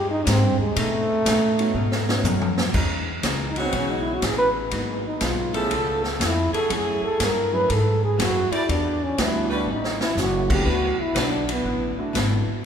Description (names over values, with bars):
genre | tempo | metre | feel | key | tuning
jazz, big band swing | 121 BPM | 4/4 | swing 66% on 8ths | E major | A4 = 440 Hz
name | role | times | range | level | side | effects
breathy trombone | melody | 0.0-12.0 s | Ab3 to B4 | -24 LUFS | equal | none
archtop guitar, miked and amplified | accompaniment | 0.0-12.5 s | G#2 to Bb4 | -32 LUFS | left 2 dB | none
upright bass | bass | 0.0-12.5 s | F#1 to B2 | -26 LUFS | equal | none
swinging big-band drum kit | drums | 0.3-12.3 s | crash cymbal, hi-hat, kick drum, ride cymbal, snare drum, toms | -27 LUFS | equal | none
clear saxophone section | sustained chords | 0.8-11.4 s | C#3 to D5 | -32 LUFS | right 1 dB | none
dark baby grand piano | accompaniment | 1.6-12.1 s | F#3 to G#4 | -32 LUFS | equal | none
room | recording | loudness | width
wet church reverb, RT60 3.5 s | recorded in a church or concert hall | -20 LUFS | side -8 dB against mid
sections
0.0-2.7 A section; 2.7-12.7 A section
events
trombone solo 0.0-12.7; drum fill 1.8-2.7, 9.7-10.2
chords
0.0 Abmaj9; 0.8 B9; 2.7 Emaj13; 4.7 G#m7; 5.7 C#7alt; 6.7 F#m9; 8.7 Em7; 9.7 A13; 10.7 D69